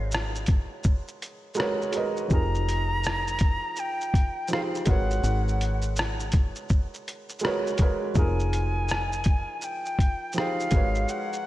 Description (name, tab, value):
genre	lo-fi hip hop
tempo	82 BPM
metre	4/4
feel	swing 62% on 16ths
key	unclear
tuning	A4 = 443 Hz
part	bright reedy jazz flute	melody	0.0-11.5 s	F5 to Bb5	-31 LUFS	left 1 dB	tape echo
part	warm upright piano	accompaniment	0.0-11.5 s	F3 to Eb5	-31 LUFS	right 2 dB	none
part	deep dub fingered electric bass	bass	0.0-11.0 s	F1 to Ab1	-27 LUFS	equal	none
part	lo-fi sampler-style drum kit	drums	0.1-11.4 s	hi-hat, kick drum, rim click, shaker	-25 LUFS	equal	none
room	moderate lush hall reverb, RT60 2.7 s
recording	dreamy mix soaked in reverb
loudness	-24 LUFS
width	side -15 dB against mid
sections	0.0-11.5 A section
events	break 11.1-11.5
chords	0.0 Abm11; 2.3 Fm11; 4.9 Abm11; 8.2 Fm11; 10.7 Abm11